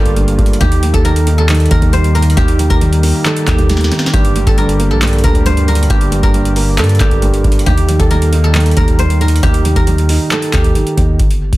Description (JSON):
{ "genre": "hip hop, trap", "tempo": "136 BPM", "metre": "4/4", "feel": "half-time", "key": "unclear", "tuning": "A4 = 439 Hz", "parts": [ { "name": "guzheng", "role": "melody", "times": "0.0-11.6 s", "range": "G4 to C5", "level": "-19 LUFS", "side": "equal", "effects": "digital delay" }, { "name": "felt-muted upright piano", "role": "accompaniment", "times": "0.0-11.2 s", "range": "G2 to Eb4", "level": "-18 LUFS", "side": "right 2 dB", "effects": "none" }, { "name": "warm analog pad", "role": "sustained chords", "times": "0.0-11.2 s", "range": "D3 to G4", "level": "-21 LUFS", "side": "left 2 dB", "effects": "chorus" }, { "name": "long sustained 808-style bass", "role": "bass", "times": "0.0-11.6 s", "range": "G1 to G2", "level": "-13 LUFS", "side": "equal", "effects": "none" }, { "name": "booming analog drum machine", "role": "drums", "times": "0.1-11.6 s", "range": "handclaps, hi-hat, kick drum, snare drum", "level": "-14 LUFS", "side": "equal", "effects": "none" } ], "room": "digital ambience", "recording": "dense, heavily limited modern master, vinyl crackle", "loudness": "-9 LUFS", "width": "side -18 dB against mid", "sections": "0.0-11.2 A section", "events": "drum fill 3.7-4.1", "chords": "0.0 Gm; 0.6 Eb; 4.1 Gm; 7.7 Eb" }